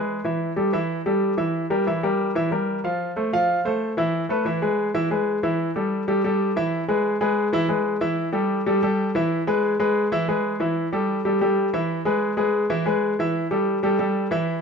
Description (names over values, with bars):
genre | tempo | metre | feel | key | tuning
latin | 186 BPM | 4/4 | straight | unclear | A4 = 440 Hz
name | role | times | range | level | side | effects
clear baby grand piano | solo | 0.0-14.6 s | E3 to F5 | -20 LUFS | equal | none
room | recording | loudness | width
moderate large studio reverb, RT60 1.1 s | none | -20 LUFS | side -5 dB against mid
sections
0.0-5.4 A section; 5.4-14.6 B section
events
none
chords
0.2 A5; 1.5 Edim; 2.8 F; 4.1 Esus4; 4.8 E; 5.4 A5; 6.7 E; 8.0 A5; 9.3 E; 10.6 A5; 11.9 E; 13.2 A5